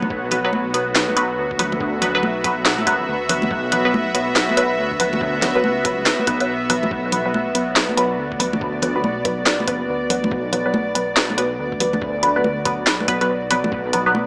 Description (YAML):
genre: deep dubstep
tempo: 141 BPM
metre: 4/4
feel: swing 62% on 16ths, half-time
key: B minor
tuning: A4 = 440 Hz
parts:
  - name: bowed-like drone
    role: sustained chords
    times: 0.0-14.3 s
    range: B3 to E5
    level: -26 LUFS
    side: equal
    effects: built-in reverb
  - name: filtered dub chord stab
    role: stabs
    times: 0.0-14.2 s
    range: F#3 to B4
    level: -24 LUFS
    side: equal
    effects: phaser, subtle chorus, dub echo
  - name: dark detuned saw bass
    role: bass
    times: 0.0-14.3 s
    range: B1 to D2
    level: -31 LUFS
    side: equal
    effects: none
  - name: congas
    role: percussion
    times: 0.0-14.3 s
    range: none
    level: -30 LUFS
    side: equal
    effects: none
  - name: electronic kick drum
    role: drums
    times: 0.1-13.8 s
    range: none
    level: -37 LUFS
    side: equal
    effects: small room ambience
  - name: garage drum kit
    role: drums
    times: 0.3-14.0 s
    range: handclaps, hi-hat, snare drum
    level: -22 LUFS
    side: equal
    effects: small room ambience
room: wet spring reverb, RT60 1.5 s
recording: small speaker sound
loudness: -20 LUFS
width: mono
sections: 0.0-14.3 A section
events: none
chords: 0.0 B5